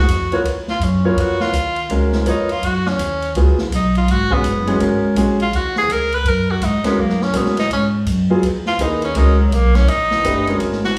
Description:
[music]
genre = modal jazz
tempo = 166 BPM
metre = 4/4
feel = swing 63% on 8ths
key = G# dorian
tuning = A4 = 440 Hz
[part]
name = bright tenor saxophone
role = melody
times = 0.0-11.0 s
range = F#3 to B4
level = -22 LUFS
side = equal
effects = none
[part]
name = upright bass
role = bass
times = 0.0-11.0 s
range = F#1 to A#2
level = -20 LUFS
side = equal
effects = none
[part]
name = swinging big-band drum kit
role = drums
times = 0.1-11.0 s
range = hi-hat, kick drum, ride cymbal, snare drum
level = -30 LUFS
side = equal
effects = none
[part]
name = clear concert grand piano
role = accompaniment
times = 0.3-10.8 s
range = F#3 to C#5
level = -21 LUFS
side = equal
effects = none
[sound]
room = wet large studio reverb, RT60 0.8 s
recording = band playing live in one room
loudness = -17 LUFS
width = mono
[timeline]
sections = 0.0-11.0 A section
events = tenor saxophone solo 0.0-11.0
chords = 0.0 G#9sus4 (rootless); 1.9 C#13sus4; 7.7 G#13sus4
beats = 0.08 | 0.44 0.81 1.17 1.53 | 1.90 2.26 2.62 2.99 | 3.35 3.71 4.08 4.44 | 4.80 5.16 5.53 5.89 | 6.25 6.61 6.98 7.34 | 7.70 8.06 8.42 8.79 | 9.15 9.51 9.87 10.23 | 10.60 10.96

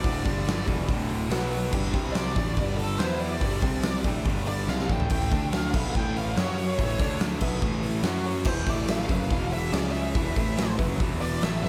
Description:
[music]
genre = classic rock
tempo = 142 BPM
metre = 4/4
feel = straight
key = D major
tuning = A4 = 440 Hz
[part]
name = bluesy overdriven lead guitar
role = melody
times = 0.0-11.7 s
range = A4 to G5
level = -36 LUFS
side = equal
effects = wah, distortion, slapback echo
[part]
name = clear upright piano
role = accompaniment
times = 0.0-11.7 s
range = G#3 to A5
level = -42 LUFS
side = equal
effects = none
[part]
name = picked twelve-string acoustic guitar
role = accompaniment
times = 0.0-11.7 s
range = B2 to E5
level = -43 LUFS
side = equal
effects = none
[part]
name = distorted electric guitar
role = riff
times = 0.0-11.7 s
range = D2 to F#4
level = -36 LUFS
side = equal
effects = distortion, slapback echo
[part]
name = distorted electric guitar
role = riff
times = 0.0-11.7 s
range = D2 to F#4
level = -36 LUFS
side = equal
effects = distortion, slapback echo
[part]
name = fuzz picked electric bass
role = bass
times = 0.0-11.7 s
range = D1 to F#2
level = -34 LUFS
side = equal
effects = overdrive
[part]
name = big rock drum kit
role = drums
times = 0.0-11.7 s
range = crash cymbal, hi-hat, kick drum, snare drum, toms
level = -30 LUFS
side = equal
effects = none
[part]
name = tambourine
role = percussion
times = 0.1-11.7 s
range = none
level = barely audible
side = none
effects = none
[sound]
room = light reverb, small room ambience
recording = none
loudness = -26 LUFS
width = mono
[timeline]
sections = 0.0-11.7 A section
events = lead electric guitar solo 0.0-11.7; drum fill 4.7-5.1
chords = 0.0 D; 0.3 G5; 0.7 D; 1.3 B5; 1.7 G5; 1.9 C5; 2.4 G5; 3.0 E5; 3.4 G5; 3.6 C5; 4.1 G5; 5.1 Asus2; 5.3 D5; 5.7 Asus2; 6.4 F#5; 6.8 Asus2; 7.0 D5; 7.4 Asus2; 8.0 F#5; 8.5 E5; 8.7 A5; 9.1 E5; 9.7 C#5; 10.1 E5; 10.4 A5; 10.8 E5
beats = | 0.04 0.47 0.89 1.31 | 1.73 2.15 2.58 3.00 | 3.42 3.84 4.26 4.68 | 5.11 5.53 5.95 6.37 | 6.79 7.21 7.63 8.05 | 8.47 8.89 9.31 9.73 | 10.15 10.57 10.99 11.41

